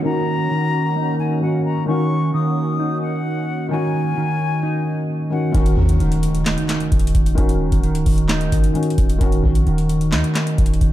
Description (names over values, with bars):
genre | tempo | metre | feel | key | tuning
hip hop, trap | 131 BPM | 4/4 | half-time | Eb minor | A4 = 440 Hz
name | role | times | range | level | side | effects
reedy concert flute | second line | 0.0-5.5 s | Gb5 to Eb6 | -26 LUFS | left 6 dB | ping-pong delay
felt-muted upright piano | accompaniment | 0.0-10.9 s | Eb3 to Gb4 | -26 LUFS | left 3 dB | low-pass filter
warm analog pad | sustained chords | 0.0-5.5 s | Eb3 to Gb4 | -27 LUFS | right 1 dB | chorus, low-pass filter
mellow electric guitar | arpeggios | 0.0-10.9 s | Eb3 to Eb4 | -21 LUFS | right 1 dB | analog chorus, low-pass filter, ping-pong delay
downlifter and impact | sound effects | 0.0-1.9, 5.5-7.4 s | none | -33 LUFS | equal | none
clean 808-style bass | bass | 5.5-10.9 s | Db1 to Eb2 | -20 LUFS | equal | none
booming analog drum machine | drums | 5.5-10.9 s | handclaps, hi-hat, kick drum, snare drum | -18 LUFS | equal | none
room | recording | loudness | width
light reverb, digital ambience | dark, warm production | -16 LUFS | side -13 dB against mid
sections
0.0-5.5 A section; 5.5-10.9 B section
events
filter sweep 0.0-5.5; impact 5.5-7.4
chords
0.0 Ebm7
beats
| 0.05 0.51 0.96 1.42 | 1.88 2.34 2.80 3.25 | 3.71 4.17 4.63 5.09 | 5.54 6.00 6.46 6.92 | 7.38 7.83 8.29 8.75 | 9.21 9.67 10.12 10.58